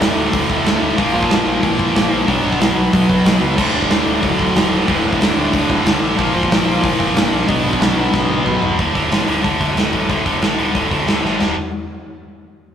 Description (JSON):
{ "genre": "punk rock", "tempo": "184 BPM", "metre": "4/4", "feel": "straight", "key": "unclear", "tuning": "A4 = 440 Hz", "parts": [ { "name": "high-gain lead guitar", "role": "melody", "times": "0.0-8.4 s", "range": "E3 to D5", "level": "-21 LUFS", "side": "equal", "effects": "distortion" }, { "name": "distorted electric guitar", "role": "riff", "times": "0.0-8.8 s", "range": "D2 to B3", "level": "-22 LUFS", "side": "equal", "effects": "distortion" }, { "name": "tight distorted guitar", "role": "riff", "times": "0.0-11.5 s", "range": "D2 to B3", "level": "-18 LUFS", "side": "equal", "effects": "distortion" }, { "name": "growling picked electric bass", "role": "bass", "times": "0.0-11.6 s", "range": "D1 to D2", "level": "-25 LUFS", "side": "equal", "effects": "overdrive" }, { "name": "big rock drum kit", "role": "drums", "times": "0.0-11.5 s", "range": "crash cymbal, hi-hat, kick drum, snare drum, splash cymbal, toms", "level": "-18 LUFS", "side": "equal", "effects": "none" } ], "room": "moderate stone room reverb, RT60 1.0 s", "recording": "rough rehearsal-room recording", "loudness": "-14 LUFS", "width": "side -8 dB against mid", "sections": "0.0-8.8 A section; 8.8-11.4 B section; 11.4-12.7 C section", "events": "drum fill 8.1-8.8, 11.2", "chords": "0.0 D5; 1.0 Bb5; 2.3 Bm; 3.6 D; 6.2 Bb; 7.5 Bm; 8.8 D5" }